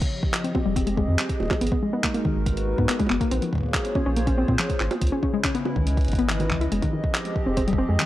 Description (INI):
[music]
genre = IDM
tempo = 141 BPM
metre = 4/4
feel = straight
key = F minor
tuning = A4 = 440 Hz
[part]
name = hollow soft pad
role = sustained chords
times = 0.0-8.1 s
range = Db3 to Eb5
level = -30 LUFS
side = equal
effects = chorus
[part]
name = electronic kick drum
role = drums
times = 0.0-7.8 s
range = none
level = -26 LUFS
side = equal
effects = none
[part]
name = jungle sampler-style drum kit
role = drums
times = 0.0-8.1 s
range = bongos, handclaps, hi-hat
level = -28 LUFS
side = right 2 dB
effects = none
[part]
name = warbly dusty pluck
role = arpeggios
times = 0.4-8.1 s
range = Eb3 to Fb4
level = -26 LUFS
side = left 2 dB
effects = chorus, tape echo
[part]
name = round analog bass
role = bass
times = 0.7-8.0 s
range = Eb1 to Bb2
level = -25 LUFS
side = equal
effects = tube saturation
[sound]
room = digital ambience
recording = dry, gritty hardware recording, transformer saturation, cassette tape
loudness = -21 LUFS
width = side -14 dB against mid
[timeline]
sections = 0.0-8.1 A section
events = none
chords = 0.0 Fm9; 1.6 Abm9; 3.3 Bbm9; 5.0 Dbm9; 6.7 Fm9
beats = 0.34 0.76 1.19 | 1.61 2.04 2.46 2.89 | 3.31 3.74 4.17 4.59 | 5.02 5.44 5.87 6.29 | 6.72 7.14 7.57 8.00